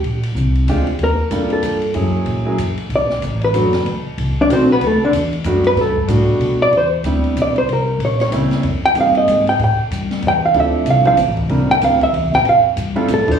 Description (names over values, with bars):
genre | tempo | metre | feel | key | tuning
jazz, small-group swing and bop | 188 BPM | 3/4 | swing 61% on 8ths | G major, C major from 6.7 s | A4 = 437 Hz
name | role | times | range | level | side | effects
upright bass | bass | 0.0-13.4 s | G1 to B2 | -19 LUFS | equal | none
open jazz drum kit | drums | 0.0-13.3 s | hi-hat, kick drum, ride cymbal, snare drum | -28 LUFS | left 1 dB | none
warm upright piano | accompaniment | 0.7-13.4 s | Eb3 to C5 | -20 LUFS | right 2 dB | plate reverb, slapback echo
hollow-body jazz guitar | melody | 1.0-13.4 s | D3 to G5 | -15 LUFS | equal | plate reverb, slapback echo
room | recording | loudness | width
moderate club reverb, RT60 0.7 s | live gig heard through the venue's PA, club reverb, small room ambience | -14 LUFS | side -7 dB against mid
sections
0.0-6.7 A section; 6.7-13.4 A section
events
hollow-body jazz guitar solo 0.0-13.4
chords
0.0 Bb13; 1.0 Ebmaj9#11; 1.9 F#7; 2.9 Bm7; 3.9 D7b9; 4.8 Gmaj9; 6.7 Cmaj9; 7.7 C7b9; 8.6 Fm11; 9.6 A5; 10.5 Dm7; 11.5 C9; 12.5 Fmaj9